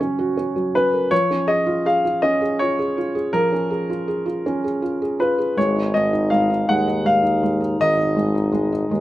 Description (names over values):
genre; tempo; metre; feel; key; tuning
six-eight pop ballad; 54 BPM (dotted quarters); 6/8; straight; unclear; A4 = 440 Hz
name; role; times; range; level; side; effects
bright concert grand piano; melody; 0.0-9.0 s; A#4 to F#5; -20 LUFS; left 1 dB; none
felt-muted upright piano; accompaniment; 0.0-9.0 s; C#3 to C#5; -22 LUFS; right 1 dB; none
clear tuba; bass; 5.6-9.0 s; G#1 to D#2; -23 LUFS; equal; none
room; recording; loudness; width
moderate small room reverb, RT60 0.6 s; rough home demo mix, nothing above 10.9 kHz; -18 LUFS; side -15 dB against mid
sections
0.0-9.0 A section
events
none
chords
0.0 F#; 1.1 C#6/E#; 5.6 G#5